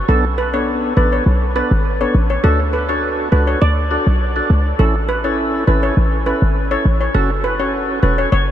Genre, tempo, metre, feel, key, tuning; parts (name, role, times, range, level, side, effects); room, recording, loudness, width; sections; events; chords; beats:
dancehall; 102 BPM; 4/4; straight; A major; A4 = 440 Hz
short 808-style bass; bass; 0.0-8.5 s; E1 to D2; -16 LUFS; equal
steel pan; melody; 0.1-8.5 s; A4 to D5; -20 LUFS; right 1 dB; tape echo
percussive tonewheel organ; accompaniment; 0.1-8.3 s; B3 to A4; -20 LUFS; equal; slow rotary speaker
moderate huge ambient reverb, RT60 7.9 s; dreamy mix soaked in reverb; -14 LUFS; side -11 dB against mid
0.0-8.5 A section
0.1 Bm7; 2.4 D; 4.8 A; 7.1 F#m
| 0.09 0.68 1.26 1.85 | 2.44 3.03 3.62 4.21 | 4.79 5.38 5.97 6.56 | 7.15 7.74 8.32